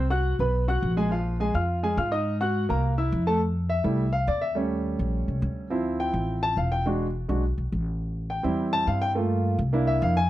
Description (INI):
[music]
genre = Afro-Cuban jazz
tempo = 209 BPM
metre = 4/4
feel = straight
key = F major from 3.4 s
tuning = A4 = 439 Hz
[part]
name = warm concert grand piano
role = accompaniment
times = 0.0-10.3 s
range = F3 to Gb6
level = -26 LUFS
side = equal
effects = none
[part]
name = upright bass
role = bass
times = 0.0-10.3 s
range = E1 to Ab2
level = -26 LUFS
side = equal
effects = none
[sound]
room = studio reverb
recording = dry, close 1970s-style studio recording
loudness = -23 LUFS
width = side -14 dB against mid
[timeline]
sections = 0.0-3.4 A section; 3.4-10.3 B section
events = grand piano solo 3.4-10.3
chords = 0.0 Cb5; 1.1 Bb5; 2.3 Ab9; 2.8 C7; 3.4 Fmaj7; 4.6 Eb7#11; 5.7 Dm7; 6.9 E7; 8.0 Am7; 9.2 Gm7; 9.7 C7